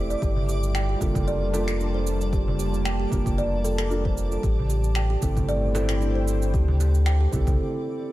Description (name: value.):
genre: organic downtempo.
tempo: 114 BPM.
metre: 4/4.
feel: swing 54% on 16ths.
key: G dorian.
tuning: A4 = 441 Hz.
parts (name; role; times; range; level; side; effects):
felt-muted upright piano; accompaniment; 0.0-8.1 s; Bb3 to C5; -32 LUFS; right 2 dB; sidechain pumping, digital delay.
airy breathy pad; sustained chords; 0.0-7.6 s; A2 to A5; -33 LUFS; equal; chorus, sidechain pumping.
kalimba; arpeggios; 0.0-7.6 s; D4 to G5; -30 LUFS; right 2 dB; digital delay.
warm sub bass; bass; 0.0-7.6 s; E1 to D2; -24 LUFS; equal; tube saturation, sidechain pumping.
twinkling granular texture; texture; 0.0-7.6 s; D5; -42 LUFS; right 1 dB; built-in reverb.
electronic shaker and finger snaps; drums; 0.1-7.6 s; none; -36 LUFS; right 1 dB; none.
darbuka; percussion; 0.1-7.6 s; none; -34 LUFS; right 1 dB; none.
electronic kick drum; drums; 0.2-7.6 s; none; -27 LUFS; equal; none.
room: light reverb, small room ambience.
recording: none.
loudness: -21 LUFS.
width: side -16 dB against mid.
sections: 0.0-8.1 A section.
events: break 7.6-8.1.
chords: 0.2 Gm7; 4.4 Am7; 6.5 D9sus4.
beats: | 0.22 0.75 1.27 1.80 | 2.33 2.85 3.38 3.91 | 4.43 4.96 5.49 6.01 | 6.54 7.07 7.59 8.12.